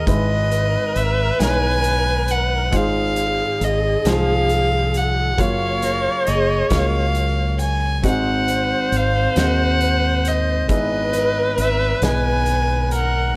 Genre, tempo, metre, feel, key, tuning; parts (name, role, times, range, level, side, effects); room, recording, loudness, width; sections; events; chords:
acoustic folk-pop ballad; 45 BPM (dotted quarters); 6/8; straight; A4 = 440 Hz
rich violin; melody; 0.0-13.4 s; Eb5 to G#5; -25 LUFS; equal; plate reverb
dark viola; second line; 0.0-13.4 s; Ab4 to Db5; -26 LUFS; equal
warm concert grand piano; accompaniment; 0.0-13.4 s; Gb1 to Eb5; -28 LUFS; equal
picked steel-string acoustic guitar; arpeggios; 0.0-13.4 s; F3 to B4; -30 LUFS; equal
fingered electric bass; bass; 0.0-13.4 s; Gb1 to Eb2; -24 LUFS; equal
loose indie drum kit; drums; 0.1-13.1 s; hi-hat, kick drum, snare drum; -27 LUFS; equal
moderate large studio reverb, RT60 0.8 s; -19 LUFS; mono
0.0-13.4 A section
0.1 Emaj7/G#; 2.7 Fm7/Ab; 5.4 Gbmaj7; 8.0 Ab7; 10.7 Emaj7/G#